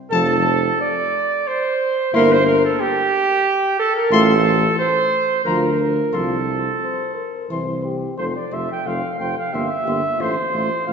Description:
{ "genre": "classical, brass quintet", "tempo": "89 BPM", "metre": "3/4", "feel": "straight", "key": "F major", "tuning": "A4 = 440 Hz", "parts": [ { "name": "mellow trumpet", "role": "melody", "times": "0.1-10.9 s", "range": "A5 to C6", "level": "-26 LUFS", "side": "left 8 dB", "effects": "none" }, { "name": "warm flugelhorn", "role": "second line", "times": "0.1-10.9 s", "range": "G4 to G5", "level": "-18 LUFS", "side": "right 3 dB", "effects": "none" }, { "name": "clear French horn", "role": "accompaniment", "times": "0.1-10.9 s", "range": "E4 to C5", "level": "-28 LUFS", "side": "left 4 dB", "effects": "none" }, { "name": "mellow euphonium", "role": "accompaniment", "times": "0.1-10.9 s", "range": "E3 to Bb3", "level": "-26 LUFS", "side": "right 1 dB", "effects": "none" }, { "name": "warm tuba", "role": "bass", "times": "0.1-10.9 s", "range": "F1 to D2", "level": "-23 LUFS", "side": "equal", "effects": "none" } ], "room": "wet scoring stage reverb, RT60 1.9 s", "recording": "nothing above 7.8 kHz", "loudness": "-17 LUFS", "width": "side -6 dB against mid", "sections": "0.1-10.9 A section", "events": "none", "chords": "0.1 F; 2.1 C7/G (rootless); 4.1 F/A; 5.4 Bb/D; 6.1 F/C; 7.5 C; 8.2 F; 9.5 C7/G; 10.2 F/A", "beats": "| 0.11 0.81 1.48 | 2.13 2.80 3.46 | 4.12 4.78 5.45 | 6.13 6.81 7.50 | 8.18 8.86 9.54 | 10.20 10.88" }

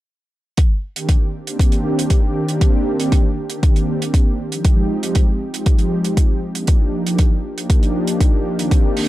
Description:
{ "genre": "nu-disco, nu disco", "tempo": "118 BPM", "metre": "4/4", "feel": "straight", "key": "C minor", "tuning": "A4 = 440 Hz", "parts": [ { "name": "electronic kick drum", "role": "drums", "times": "0.6-8.8 s", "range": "none", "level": "-14 LUFS", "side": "equal", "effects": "none" }, { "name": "hi-hat", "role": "drums", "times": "0.6-9.1 s", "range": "none", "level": "-27 LUFS", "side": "right 5 dB", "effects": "none" }, { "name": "warm analog pad", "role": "accompaniment", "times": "1.0-9.1 s", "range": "Eb3 to G4", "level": "-20 LUFS", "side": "equal", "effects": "chorus, analog delay" } ], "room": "studio reverb", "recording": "dry, gritty hardware recording, transformer saturation", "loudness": "-15 LUFS", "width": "side -16 dB against mid", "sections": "0.6-9.1 A section", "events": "none", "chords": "0.6 Cm7; 4.4 Fm7; 6.4 Ebmaj7", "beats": "| 0.58 1.09 1.59 2.10 | 2.61 3.12 3.63 4.14 | 4.65 5.15 5.66 6.17 | 6.68 7.19 7.70 8.21 | 8.71" }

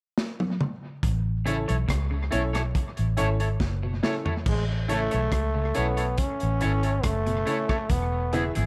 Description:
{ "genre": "roots reggae", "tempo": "70 BPM", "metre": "4/4", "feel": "straight", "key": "A major", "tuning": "A4 = 440 Hz", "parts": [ { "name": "crunchy breakbeat drum kit", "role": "drums", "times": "0.2-8.7 s", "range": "crash cymbal, hi-hat, kick drum, rim click, snare drum, toms", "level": "-31 LUFS", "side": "equal", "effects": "dub echo" }, { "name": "vintage muted fingered electric bass", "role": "bass", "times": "1.0-8.7 s", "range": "E1 to C#2", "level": "-29 LUFS", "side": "equal", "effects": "none" }, { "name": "electric guitar at the edge of break-up", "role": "accompaniment", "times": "1.5-8.6 s", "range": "B3 to C#5", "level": "-35 LUFS", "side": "equal", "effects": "vibrato effect, dub echo" }, { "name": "electric guitar at the edge of break-up", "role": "arpeggios", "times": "1.5-8.7 s", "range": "B2 to E3", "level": "-38 LUFS", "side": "equal", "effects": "phaser" }, { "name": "warm grand piano", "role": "stabs", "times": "1.5-8.5 s", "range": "C#4 to E5", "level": "-35 LUFS", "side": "equal", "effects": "none" }, { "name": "growling trombone", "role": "melody", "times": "4.5-8.5 s", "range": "G#3 to C#4", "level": "-31 LUFS", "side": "equal", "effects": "dub echo" } ], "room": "light reverb", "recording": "none", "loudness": "-26 LUFS", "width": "mono", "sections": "0.0-1.0 A section; 1.0-4.5 B section; 4.5-8.7 C section", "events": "drum fill 0.2-1.0, 3.6-4.5", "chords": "0.0 N.C.; 1.0 A; 7.9 E", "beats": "0.17 | 1.03 1.89 2.75 3.61 | 4.46 5.32 6.18 7.04 | 7.90" }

